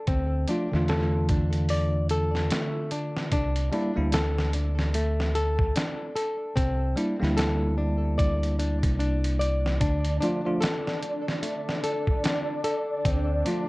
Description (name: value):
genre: trip hop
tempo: 74 BPM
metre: 4/4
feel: swing 59% on 16ths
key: D minor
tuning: A4 = 441 Hz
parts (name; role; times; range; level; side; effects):
- flamenco guitar; arpeggios; 0.0-13.7 s; A3 to D5; -30 LUFS; left 1 dB; tape echo
- deep dub fingered electric bass; bass; 0.1-13.4 s; C2 to E2; -26 LUFS; equal; none
- dusty soul sampler-style drum kit; drums; 0.1-13.7 s; hi-hat, kick drum, snare drum; -29 LUFS; equal; none
- bell-like tine electric piano; accompaniment; 0.5-13.6 s; D3 to F4; -30 LUFS; equal; harmonic tremolo, tape echo
- string machine, cellos; sustained chords; 9.8-13.7 s; D4 to D5; -31 LUFS; equal; phaser, ensemble chorus
room: light reverb, digital ambience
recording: worn, warbling old tape, cassette tape, warbly pitch drift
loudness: -24 LUFS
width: side -22 dB against mid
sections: 0.0-13.7 A section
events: none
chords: 0.0 Dm; 3.3 C7; 9.8 Dm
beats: | 0.08 0.89 1.70 2.51 | 3.32 4.13 4.94 5.75 | 6.57 7.38 8.19 9.00 | 9.81 10.62 11.43 12.24 | 13.05